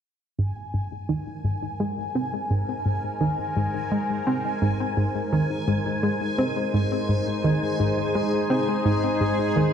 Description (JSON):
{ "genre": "ambient, sequencer-driven space music", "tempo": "85 BPM", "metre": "4/4", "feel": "straight", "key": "Ab major", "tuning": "A4 = 440 Hz", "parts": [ { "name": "sweeping resonant pad", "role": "sustained chords", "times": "0.4-9.7 s", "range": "Ab3 to C5", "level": "-27 LUFS", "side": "equal", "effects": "chorus" }, { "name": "analog pluck", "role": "riff", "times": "0.4-9.7 s", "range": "Ab2 to C4", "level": "-24 LUFS", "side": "equal", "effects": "chorus, cassette tape, ping-pong delay" }, { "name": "bubbling stepped-filter texture", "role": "texture", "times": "0.4-9.7 s", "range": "Ab5", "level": "-32 LUFS", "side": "left 1 dB", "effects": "chorus, built-in reverb" } ], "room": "wet concert hall reverb, RT60 2.6 s", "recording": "dark, warm production", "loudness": "-22 LUFS", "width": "side -8 dB against mid", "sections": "0.4-9.7 A section", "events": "fade-in on analog synth pad 0.4-9.7; filter sweep on synth arpeggio sound 0.4-9.7", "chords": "0.4 Ab" }